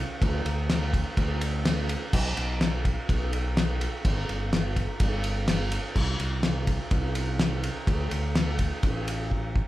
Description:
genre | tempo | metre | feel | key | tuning
folk rock and heartland rock | 125 BPM | 4/4 | straight | unclear | A4 = 440 Hz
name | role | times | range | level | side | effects
fingered electric bass | bass | 0.0-9.6 s | G1 to D2 | -29 LUFS | equal | none
cloth-damped thuddy drum kit | drums | 0.2-9.7 s | crash cymbal, kick drum, ride cymbal, snare drum | -26 LUFS | equal | none
room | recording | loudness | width
light reverb | band playing live in one room | -24 LUFS | side -15 dB against mid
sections
0.0-9.7 A section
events
drum fill 9.3-9.7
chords
none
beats
| 0.21 0.69 1.17 1.65 | 2.13 2.61 3.09 3.57 | 4.04 4.52 5.00 5.48 | 5.96 6.44 6.92 7.40 | 7.88 8.36 8.84 9.32

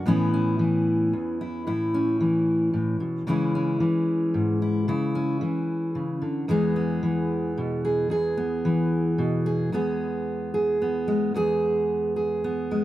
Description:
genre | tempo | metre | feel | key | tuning
folk | 112 BPM | 3/4 | straight | E major | A4 = 443 Hz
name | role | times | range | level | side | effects
fingerpicked steel-string acoustic guitar | solo | 0.0-12.8 s | E2 to G#4 | -22 LUFS | equal | none
room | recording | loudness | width
light reverb | recorded outdoors, with no room sound | -22 LUFS | side -14 dB against mid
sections
0.0-9.7 A section; 9.7-12.8 B section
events
none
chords
0.0 Aadd9; 3.3 C#m; 6.5 E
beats
| 0.05 0.58 1.12 | 1.66 2.19 2.73 | 3.27 3.80 4.34 | 4.88 5.42 5.95 | 6.49 7.03 7.56 | 8.10 8.64 9.18 | 9.72 10.26 10.79 | 11.34 11.88 12.42

